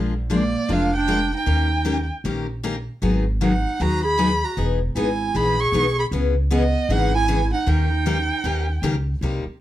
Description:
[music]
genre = acoustic string swing (jazz manouche)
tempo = 155 BPM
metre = 4/4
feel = swing 62% on 8ths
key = unclear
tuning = A4 = 440 Hz
[part]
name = picked steel-string acoustic guitar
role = accompaniment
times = 0.0-9.4 s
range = C3 to A#4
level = -24 LUFS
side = left 4 dB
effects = none
[part]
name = upright bass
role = bass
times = 0.0-9.5 s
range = E1 to D#2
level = -23 LUFS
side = equal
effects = none
[part]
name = dark violin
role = melody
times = 0.3-8.8 s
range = D5 to C#6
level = -24 LUFS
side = right 2 dB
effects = none
[part]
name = breathy clarinet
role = second line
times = 0.3-8.8 s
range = A#3 to G#4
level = -26 LUFS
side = right 3 dB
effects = none
[sound]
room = light reverb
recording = dark, warm production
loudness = -19 LUFS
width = side -13 dB against mid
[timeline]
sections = 0.0-9.2 A section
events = none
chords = 0.0 A#7; 1.5 D#7; 3.0 G#m7; 4.6 Emaj7; 6.1 C#m9; 7.7 D#7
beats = 0.30 0.69 1.08 | 1.47 1.86 2.24 2.63 | 3.02 3.41 3.79 4.18 | 4.57 4.96 5.34 5.73 | 6.12 6.51 6.89 7.28 | 7.67 8.06 8.45 8.83 | 9.22

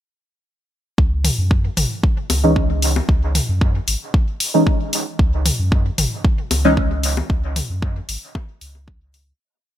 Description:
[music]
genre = dub techno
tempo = 114 BPM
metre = 4/4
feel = straight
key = C# minor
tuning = A4 = 440 Hz
[part]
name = pure sine sub bass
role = bass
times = 1.0-9.3 s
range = G#1 to F#2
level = -20 LUFS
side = equal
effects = sidechain pumping
[part]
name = electronic kick drum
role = drums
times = 1.0-9.0 s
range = none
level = -17 LUFS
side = equal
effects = studio reverb
[part]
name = electronic hi-hat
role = drums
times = 1.2-9.2 s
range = none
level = -22 LUFS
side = left 2 dB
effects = studio reverb
[part]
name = electronic toms and bongos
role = percussion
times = 1.2-8.5 s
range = none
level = -27 LUFS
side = left 1 dB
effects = sidechain pumping on toms, studio reverb, sidechain pumping on perc, dub echo
[part]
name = deep mellow chord stab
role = stabs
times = 2.4-6.7 s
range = E3 to D#4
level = -19 LUFS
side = equal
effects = chorus, phaser, sidechain pumping, dub echo
[sound]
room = light reverb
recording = bright 1980s-style digital production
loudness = -16 LUFS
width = side -12 dB against mid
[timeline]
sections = 1.0-9.4 groove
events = fade-out 6.6-9.4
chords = none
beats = | 0.98 1.51 2.04 2.56 | 3.09 3.61 4.14 4.67 | 5.19 5.72 6.25 6.77 | 7.30 7.82 8.35 8.88

